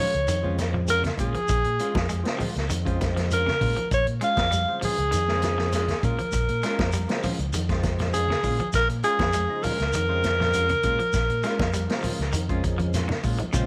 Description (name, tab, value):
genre	afrobeat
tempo	100 BPM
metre	4/4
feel	straight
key	Bb minor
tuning	A4 = 441 Hz
part	breathy alto saxophone	melody	0.0-12.9 s	Ab4 to F5	-28 LUFS	equal	none
part	percussive tonewheel organ	accompaniment	0.0-13.7 s	Db3 to Eb4	-38 LUFS	equal	slow rotary speaker, chorus vibrato
part	electric guitar at the edge of break-up	arpeggios	0.0-13.7 s	Db3 to Ab3	-37 LUFS	equal	none
part	clean electric guitar	stabs	0.0-13.7 s	Ab3 to F4	-39 LUFS	equal	none
part	fingered electric bass	bass	0.1-13.7 s	Bb1 to Bb2	-30 LUFS	equal	none
part	vintage drum kit	drums	0.1-13.7 s	hi-hat, kick drum, snare drum	-32 LUFS	equal	none
part	shekere	percussion	0.3-13.7 s	none	-37 LUFS	equal	none
part	congas	percussion	0.4-13.5 s	none	-36 LUFS	equal	none
room	light reverb, small room ambience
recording	none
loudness	-24 LUFS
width	mono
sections	0.0-13.5 A section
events	drum fill 12.6-13.5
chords	0.0 Bbm7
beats	0.28 0.89 | 1.49 2.10 2.71 3.31 | 3.91 4.52 5.12 5.72 | 6.33 6.93 7.53 8.13 | 8.73 9.34 9.94 10.54 | 11.14 11.74 12.34 12.94 | 13.54